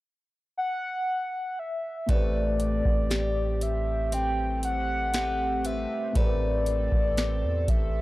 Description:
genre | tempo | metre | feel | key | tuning
contemporary R&B | 59 BPM | 4/4 | straight | A dorian | A4 = 440 Hz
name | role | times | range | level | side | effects
hollow clarinet-like synth lead | melody | 0.6-8.0 s | D5 to G5 | -29 LUFS | equal | chorus
felt-muted upright piano | accompaniment | 2.1-8.0 s | A2 to B4 | -36 LUFS | left 1 dB | none
chorused pulse-width pad | sustained chords | 2.6-8.0 s | A3 to A4 | -37 LUFS | equal | none
picked plugged-in steel-string acoustic guitar | arpeggios | 2.1-8.0 s | A3 to B4 | -35 LUFS | left 3 dB | none
long sustained 808-style bass | bass | 2.1-8.0 s | A1 to E2 | -29 LUFS | equal | none
booming analog drum machine | drums | 2.1-7.9 s | hi-hat, kick drum, snare drum | -26 LUFS | equal | none
room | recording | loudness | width
little or no reverb | dry, gritty hardware recording | -25 LUFS | side -18 dB against mid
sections
0.0-2.1 A section; 2.1-8.0 B section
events
none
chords
0.0 N.C.; 2.1 Am9

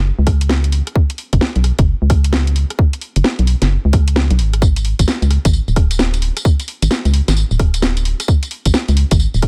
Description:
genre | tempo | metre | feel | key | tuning
UK garage, two-step garage | 131 BPM | 4/4 | swing 64% on 16ths | unclear | A4 = 443 Hz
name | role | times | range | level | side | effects
organ-like FM bass | bass | 0.0-9.5 s | D1 to C#2 | -17 LUFS | equal | none
electronic kick drum | drums | 0.3-9.5 s | none | -16 LUFS | equal | none
garage drum kit | drums | 0.3-9.5 s | hi-hat, rim click, snare drum, tambourine | -22 LUFS | equal | none
room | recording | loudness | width
digital ambience | none | -15 LUFS | mono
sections
0.0-9.5 A section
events
none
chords
none

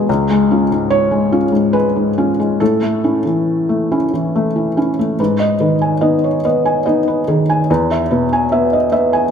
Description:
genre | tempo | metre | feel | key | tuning
neoclassical minimalist piano | 72 BPM | 3/4 | rubato | G# phrygian | A4 = 440 Hz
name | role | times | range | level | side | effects
felt-muted upright piano | solo | 0.0-9.3 s | C#2 to G#5 | -13 LUFS | equal | none
room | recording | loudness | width
moderate scoring stage reverb, RT60 1.6 s | none | -13 LUFS | side -7 dB against mid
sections
0.0-5.2 A section; 5.2-9.3 B section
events
none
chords
0.1 C#; 2.6 A; 5.2 G#m; 7.7 E

